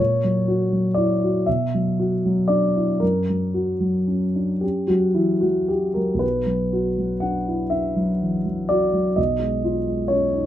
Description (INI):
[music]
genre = classical, romantic nocturne for solo piano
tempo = 36-43 BPM (dotted quarters)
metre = 6/8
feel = rubato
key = B minor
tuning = A4 = 440 Hz
[part]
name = dark grand piano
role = solo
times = 0.0-10.5 s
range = B1 to F#5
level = -19 LUFS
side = equal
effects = none
[sound]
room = light reverb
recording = close, detailed microphones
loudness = -19 LUFS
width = side -12 dB against mid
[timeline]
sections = 0.0-10.5 A section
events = none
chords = 0.0 F#7/A#; 1.5 Bm; 3.0 F#; 6.2 Bm; 9.2 C#7/B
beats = 1.47 | 3.01 4.62 | 6.23 7.72 | 9.18